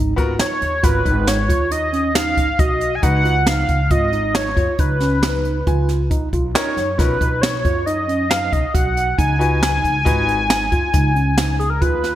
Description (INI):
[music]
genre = progressive instrumental, band music in an uneven meter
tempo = 137 BPM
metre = 7/4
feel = straight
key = G# dorian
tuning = A4 = 440 Hz
[part]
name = mellow tine electric piano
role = arpeggios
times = 0.0-12.2 s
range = C#4 to F#4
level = -24 LUFS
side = right 3 dB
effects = wide subtle chorus, digital delay
[part]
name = upright bass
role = bass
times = 0.0-12.2 s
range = G#1 to F#2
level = -22 LUFS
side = equal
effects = none
[part]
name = bright grand piano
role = accompaniment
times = 0.2-10.4 s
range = B3 to G#5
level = -27 LUFS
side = left 4 dB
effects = none
[part]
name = jazz brush drum kit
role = drums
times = 0.2-12.1 s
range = hi-hat, kick drum, snare drum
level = -20 LUFS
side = equal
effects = none
[part]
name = lead with added fifth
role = melody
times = 0.4-12.2 s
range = G#4 to G#5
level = -20 LUFS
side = equal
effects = chorus, digital delay
[sound]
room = moderate lush hall reverb, RT60 1.5 s, small room ambience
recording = bright 1980s-style digital production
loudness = -15 LUFS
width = side -12 dB against mid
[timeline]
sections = 0.0-12.2 A section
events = grand piano fill 5.4-6.1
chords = 0.0 G#m9; 3.0 C#7sus4; 6.1 Bmaj7; 9.2 G#m7